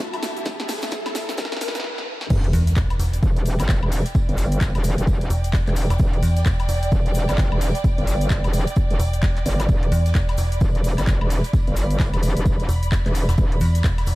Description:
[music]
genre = bass house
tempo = 130 BPM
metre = 4/4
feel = swing 61% on 16ths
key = E minor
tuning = A4 = 442 Hz
[part]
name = electronic kick drum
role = drums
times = 0.0-14.0 s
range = none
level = -21 LUFS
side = equal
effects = high-pass filter on kick, small room ambience
[part]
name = vintage brush drum kit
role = drums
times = 0.0-14.2 s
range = hi-hat, snare drum, tambourine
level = -42 LUFS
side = right 1 dB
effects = none
[part]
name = cabasa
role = percussion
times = 0.0-14.2 s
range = none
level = -41 LUFS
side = left 3 dB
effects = none
[part]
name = riser and sub drop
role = sound effects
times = 0.0-4.1 s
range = none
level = -29 LUFS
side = equal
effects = none
[part]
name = warm symphonic string section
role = texture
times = 0.0-14.2 s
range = E4 to B5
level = -32 LUFS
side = right 2 dB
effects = sidechain pumping
[part]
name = house drum kit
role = drums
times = 0.1-14.2 s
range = crash cymbal, handclaps, hi-hat, snare drum, woodblock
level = -31 LUFS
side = left 1 dB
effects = high-pass filter on snare, small room ambience, high-pass filter on hats, high-pass filter on perc, high-pass filter on cymbals
[part]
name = metallic wobble bass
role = bass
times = 2.3-13.6 s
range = E1 to G1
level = -22 LUFS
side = equal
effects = chorus, overdrive, sidechain pumping
[part]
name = metallic FM bass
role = bass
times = 2.5-14.2 s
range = E1 to E2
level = -20 LUFS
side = equal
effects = tube saturation, sidechain pumping
[sound]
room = studio ambience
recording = high-pass filter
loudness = -18 LUFS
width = side -19 dB against mid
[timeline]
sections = 0.0-2.3 A section; 2.3-14.2 B section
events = build-up 0.0-2.3; drum fill 0.0-1.8, 1.8-2.3; riser 0.0-1.8; stop 1.8-2.3; drop 2.3-14.2; impact 2.3-4.1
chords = 0.0 N.C.; 2.3 Em

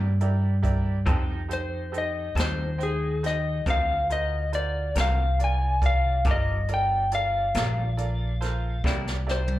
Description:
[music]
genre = slow blues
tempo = 46 BPM (dotted quarters)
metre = 12/8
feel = straight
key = F mixolydian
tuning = A4 = 436 Hz
[part]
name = bright upright piano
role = accompaniment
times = 0.0-9.6 s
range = A3 to D6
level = -36 LUFS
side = right 5 dB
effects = plate reverb, slapback echo
[part]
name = electric guitar through a small old amp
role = accompaniment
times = 0.0-9.1 s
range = C3 to A#4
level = -34 LUFS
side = left 3 dB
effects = tremolo, plate reverb, slapback echo
[part]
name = upright bass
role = bass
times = 0.0-9.6 s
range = G1 to G2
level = -26 LUFS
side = equal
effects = none
[part]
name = jazz brush drum kit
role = drums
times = 0.2-9.6 s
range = hi-hat, kick drum, snare drum, toms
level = -28 LUFS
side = equal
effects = none
[part]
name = electric slide guitar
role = melody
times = 1.5-9.6 s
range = Ab4 to Ab5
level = -27 LUFS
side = left 2 dB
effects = plate reverb, slapback echo
[sound]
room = light reverb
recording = live gig heard through the venue's PA, club reverb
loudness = -23 LUFS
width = side -15 dB against mid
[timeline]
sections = 0.0-9.6 A section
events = electric slide guitar solo 0.0-9.6; drum fill 8.8-9.6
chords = 0.0 C7 (rootless); 1.1 F7; 3.7 D7alt; 6.3 Gm7; 8.8 C7

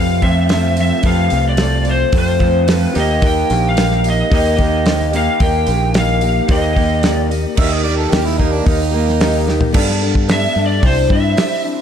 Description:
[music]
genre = folk rock and heartland rock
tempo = 110 BPM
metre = 4/4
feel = straight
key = unclear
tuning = A4 = 440 Hz
[part]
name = lead guitar through a small cranked amp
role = melody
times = 0.0-11.6 s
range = C5 to G5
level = -19 LUFS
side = equal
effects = overdrive, analog delay
[part]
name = clear upright piano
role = accompaniment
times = 0.0-11.8 s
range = E4 to E5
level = -28 LUFS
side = right 5 dB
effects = none
[part]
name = picked steel-string acoustic guitar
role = accompaniment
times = 0.0-11.8 s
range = F2 to A4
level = -23 LUFS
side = left 8 dB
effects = none
[part]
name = mellow tonewheel organ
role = sustained chords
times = 0.0-11.8 s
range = Bb3 to C5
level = -28 LUFS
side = right 1 dB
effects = none
[part]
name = electric guitar through a small old amp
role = riff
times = 0.0-9.8 s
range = F2 to G4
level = -21 LUFS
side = right 2 dB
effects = none
[part]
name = fingered electric bass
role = bass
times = 0.0-11.3 s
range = Bb1 to G2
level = -17 LUFS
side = equal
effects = none
[part]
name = damped 70s drum kit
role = drums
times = 0.2-11.5 s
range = crash cymbal, hi-hat, kick drum, snare drum, toms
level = -18 LUFS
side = equal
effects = none
[part]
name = clear harmonica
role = second line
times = 7.6-9.6 s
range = D4 to E5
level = -22 LUFS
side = right 7 dB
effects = none
[sound]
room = light reverb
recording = dark, warm production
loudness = -12 LUFS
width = side -8 dB against mid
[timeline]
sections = 0.0-7.6 A section; 7.6-9.8 B section; 9.8-11.8 C section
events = drum fill 9.5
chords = 0.0 F; 3.0 Eb; 9.8 Gadd9; 10.8 Cadd9

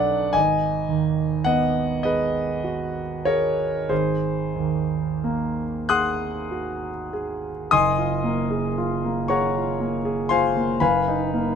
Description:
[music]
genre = classical, impressionist solo piano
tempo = 29-40 BPM (dotted quarters)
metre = 6/8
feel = rubato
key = unclear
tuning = A4 = 440 Hz
[part]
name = clear concert grand piano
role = solo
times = 0.0-11.6 s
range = Gb1 to Gb6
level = -20 LUFS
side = equal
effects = none
[sound]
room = light reverb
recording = close, detailed microphones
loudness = -21 LUFS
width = side -7 dB against mid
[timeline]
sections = 0.0-7.7 A section; 7.7-11.6 B section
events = none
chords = 0.3 Abm7; 3.9 Ab9; 7.7 Gbmaj9; 10.8 Abm9/Gb

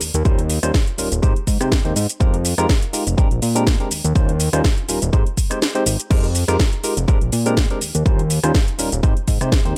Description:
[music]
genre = filtered disco house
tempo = 123 BPM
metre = 4/4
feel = swing 55% on 16ths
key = unclear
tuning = A4 = 440 Hz
[part]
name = fat analog bass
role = bass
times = 0.0-9.7 s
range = Eb1 to C3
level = -23 LUFS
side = equal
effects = sidechain pumping, low-pass filter
[part]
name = house drum kit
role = drums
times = 0.0-9.7 s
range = crash cymbal, hi-hat, rim click, shaker, snare drum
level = -25 LUFS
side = equal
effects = sidechain pumping on hats, sidechain pumping on perc, sidechain pumping on cymbals
[part]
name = barky tine electric piano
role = accompaniment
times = 0.2-9.7 s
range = G3 to C5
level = -26 LUFS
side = equal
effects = overdrive, phaser, sidechain pumping, low-pass filter
[part]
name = electronic kick drum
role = drums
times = 0.3-9.6 s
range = none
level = -20 LUFS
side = equal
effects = none
[sound]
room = little or no reverb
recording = none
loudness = -18 LUFS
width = mono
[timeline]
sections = 0.0-9.8 A section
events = kick drops out 5.6-6.1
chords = 0.0 Eb13; 1.2 Abmaj7; 2.2 Fm11; 3.2 Bb13; 3.9 Eb13; 5.1 Abmaj7; 6.1 Fm11; 7.1 Bb13; 7.8 Eb13; 9.0 Abmaj7

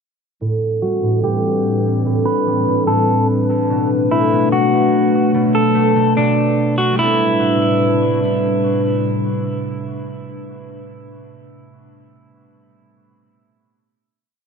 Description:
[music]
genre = hip hop, atmospheric cloud-rap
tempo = 146 BPM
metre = 4/4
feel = half-time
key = A dorian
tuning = A4 = 441 Hz
[part]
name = warbly tape-like pad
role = sustained chords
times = 0.9-10.8 s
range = A2 to B4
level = -17 LUFS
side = left 1 dB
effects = chorus, built-in reverb, low-pass filter
[part]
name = concert harp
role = arpeggios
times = 0.4-10.9 s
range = A2 to D4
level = -22 LUFS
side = right 3 dB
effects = low-pass filter, dub echo
[part]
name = electric guitar at the edge of break-up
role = melody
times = 0.8-8.2 s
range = D4 to B4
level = -19 LUFS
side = equal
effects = phaser, low-pass filter, dub echo
[sound]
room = wet echo chamber reverb, RT60 1.4 s, studio ambience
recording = echo-heavy mix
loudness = -14 LUFS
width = side -6 dB against mid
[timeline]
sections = 0.4-7.0 breakdown; 7.0-10.3 final chord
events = filter sweep 0.4-7.0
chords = 0.4 Am11; 3.7 Bm7; 7.0 Am11

